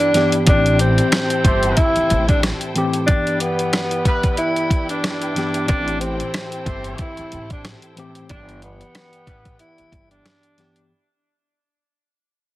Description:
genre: hip hop, boom-bap hip-hop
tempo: 92 BPM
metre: 4/4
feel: swing 56% on 16ths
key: unclear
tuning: A4 = 439 Hz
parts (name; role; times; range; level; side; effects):
- breathy tenor saxophone; melody; 0.0-10.9 s; B3 to E4; -20 LUFS; equal; high-pass filter, low-pass filter, tape echo, plate reverb
- mellow tine electric piano; accompaniment; 0.0-10.9 s; G2 to G4; -24 LUFS; left 2 dB; medium stereo tremolo, high-pass filter, low-pass filter, plate reverb
- warm studio string section; sustained chords; 0.0-10.9 s; E4 to G5; -31 LUFS; equal; high-pass filter, low-pass filter
- boom bap sampler-style drum kit; drums; 0.0-10.9 s; hi-hat, kick drum, rim click, snare drum; -19 LUFS; equal; none
- upright bass; bass; 0.5-10.2 s; G1 to A1; -22 LUFS; equal; none
- clear horn section; stabs; 1.5-9.5 s; G3 to C5; -27 LUFS; right 1 dB; high-pass filter, low-pass filter, tape echo, plate reverb
room: light reverb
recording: heavily compressed radio sound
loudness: -16 LUFS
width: side -17 dB against mid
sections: 0.0-10.9 A section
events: fade-out 0.0-10.9; break 3.1-5.7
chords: 0.5 Am7; 3.1 G6; 5.7 Am7; 8.3 G6

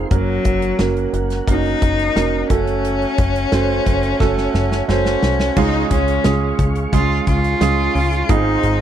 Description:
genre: piano-driven pop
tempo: 88 BPM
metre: 4/4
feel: straight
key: Db major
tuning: A4 = 440 Hz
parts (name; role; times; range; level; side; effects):
- warm grand piano; accompaniment; 0.0-8.8 s; Ab2 to C5; -21 LUFS; right 10 dB; none
- tonewheel organ; sustained chords; 0.0-8.8 s; Ab4 to Db6; -33 LUFS; left 2 dB; chorus vibrato, slow rotary speaker
- plucky analog bass; bass; 0.0-8.8 s; F1 to Db2; -20 LUFS; left 1 dB; none
- rich cello; melody; 0.1-8.8 s; Gb3 to F4; -20 LUFS; left 4 dB; slapback echo
- natural country drum kit; drums; 0.1-8.8 s; crash cymbal, hi-hat, kick drum, snare drum; -20 LUFS; left 1 dB; none
room: studio reverb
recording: dry, close 1970s-style studio recording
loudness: -15 LUFS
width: side -10 dB against mid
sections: 0.0-5.6 A section; 5.6-8.8 B section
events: drum fill 4.2-5.6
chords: 0.1 Gb; 2.5 Gbm; 5.6 Db; 8.3 Ab6

